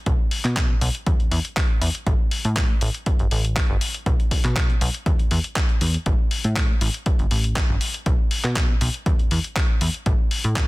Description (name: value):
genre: filtered disco house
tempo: 120 BPM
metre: 4/4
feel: straight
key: unclear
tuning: A4 = 440 Hz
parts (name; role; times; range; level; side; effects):
- plucky analog bass; bass; 0.1-10.7 s; G1 to B2; -23 LUFS; equal; sidechain pumping, low-pass filter
- dusty soul sampler-style drum kit; drums; 0.1-10.7 s; handclaps, hi-hat; -26 LUFS; left 1 dB; sidechain pumping on hats
- electronic kick drum; drums; 0.1-10.7 s; none; -21 LUFS; equal; none
room: digital ambience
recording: dense, heavily limited modern master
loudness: -19 LUFS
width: side -21 dB against mid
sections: 0.0-10.7 A section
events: filter sweep on analog synth bass 0.0-10.7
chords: none